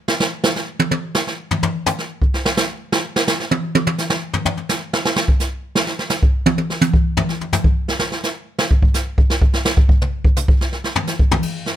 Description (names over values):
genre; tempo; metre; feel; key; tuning
jazz; 169 BPM; 4/4; swing 64% on 8ths; none; none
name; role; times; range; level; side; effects
jazz brush drum kit; drums; 0.1-11.7 s; hi-hat, kick drum, ride cymbal, snare drum, toms; -16 LUFS; equal; none
room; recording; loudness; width
little or no reverb; close, detailed microphones; -16 LUFS; side -11 dB against mid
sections
0.0-11.4 A section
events
drum solo 0.0-11.4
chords
none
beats
| 0.08 0.44 0.79 1.15 | 1.50 1.86 2.21 2.57 | 2.92 3.28 3.63 3.98 | 4.34 4.69 5.05 5.40 | 5.75 6.11 6.46 6.82 | 7.17 7.53 7.88 8.23 | 8.59 8.94 9.30 9.65 | 10.01 10.36 10.72 11.07 | 11.43